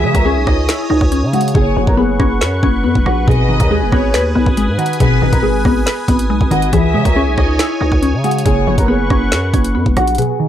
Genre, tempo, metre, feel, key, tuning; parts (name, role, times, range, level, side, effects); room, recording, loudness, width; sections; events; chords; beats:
hip hop, drill; 139 BPM; 4/4; half-time; A4 = 440 Hz
nylon-string guitar; melody; 0.0-10.5 s; F#4 to A#4; -21 LUFS; right 1 dB; low-pass filter, analog delay
warm studio violin section; second line; 0.0-8.9 s; B4 to E5; -23 LUFS; equal; analog delay
glassy wavetable pluck; accompaniment; 0.0-10.5 s; B2 to C#5; -17 LUFS; left 2 dB; chorus, low-pass filter
sweeping resonant pad; sustained chords; 0.0-10.2 s; B4 to D#6; -24 LUFS; equal; chorus
growling 808-style bass; bass; 0.0-10.2 s; E1 to C#3; -17 LUFS; equal
drill drum kit; drums; 0.1-10.3 s; finger snaps, hi-hat, kick drum, rim click, snare drum; -17 LUFS; equal
light reverb; dry, gritty hardware recording, transformer saturation; -12 LUFS; side -11 dB against mid
0.0-10.2 A section
hi-hats muted 1.6-3.3; break 10.2-10.5
0.0 C#madd9; 1.6 F#sus4; 3.3 G#m; 6.7 C#madd9; 8.5 F#sus4
0.26 0.69 1.12 | 1.55 1.98 2.41 2.85 | 3.28 3.71 4.14 4.57 | 5.00 5.43 5.87 6.30 | 6.73 7.16 7.59 8.03 | 8.46 8.89 9.32 9.75 | 10.18